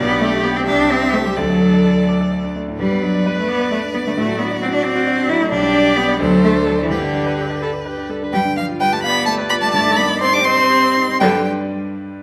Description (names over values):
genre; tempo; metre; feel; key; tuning
quick classical-period movement for piano quartet; 77-90 BPM (dotted quarters); 6/8; rubato; G major; A4 = 439 Hz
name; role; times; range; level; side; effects
rich violin; melody; 0.0-11.5 s; B4 to D6; -23 LUFS; equal; none
clear cello; second line; 0.0-11.5 s; D3 to E4; -20 LUFS; equal; none
clear concert grand piano; accompaniment; 0.0-12.2 s; B1 to D6; -24 LUFS; equal; none
clear viola; accompaniment; 0.0-11.5 s; D3 to D5; -25 LUFS; equal; none
room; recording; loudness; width
wet recital hall reverb, RT60 1.6 s; none; -17 LUFS; mono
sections
0.0-8.3 A section; 8.3-11.2 B section; 11.2-12.2 C section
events
slowing down 7.6-11.2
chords
0.0 G/B; 0.7 C; 1.4 D; 2.8 G; 4.2 D7/A; 5.5 G/B; 6.2 D5; 6.9 G; 8.3 G7; 9.7 Cm/G; 11.2 G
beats
0.68 | 1.37 2.08 | 2.79 3.48 | 4.17 4.84 | 5.52 6.21 | 6.91 7.62 | 8.34 9.04 | 9.74 10.45 | 11.21 11.93